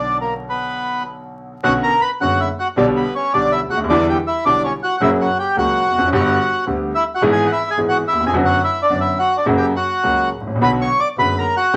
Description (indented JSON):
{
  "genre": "tango",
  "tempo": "107 BPM",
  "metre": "4/4",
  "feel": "rubato",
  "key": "B harmonic minor",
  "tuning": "A4 = 440 Hz",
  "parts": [
    { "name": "bandoneon", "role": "melody", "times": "0.0-11.8 s", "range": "A#3 to D6", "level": "-20 LUFS", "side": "equal", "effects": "none" },
    { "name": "warm concert grand piano", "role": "accompaniment", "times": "0.0-11.8 s", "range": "F#1 to G#4", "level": "-22 LUFS", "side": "equal", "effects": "none" },
    { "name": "clear double bass", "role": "bass", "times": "0.0-11.8 s", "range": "E#1 to E2", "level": "-32 LUFS", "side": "equal", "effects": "none" }
  ],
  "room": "moderate studio reverb, RT60 0.6 s",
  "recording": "vinyl crackle",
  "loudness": "-18 LUFS",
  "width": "mono",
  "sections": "0.0-1.6 A section; 1.6-11.8 B section",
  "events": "break 0.5-1.6",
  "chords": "0.0 Bm; 1.6 Bmadd9; 2.8 G/B; 3.9 Em7; 5.0 F#; 6.1 G; 7.2 E/G#; 8.3 Bm/F#; 9.5 F#; 10.6 Bm"
}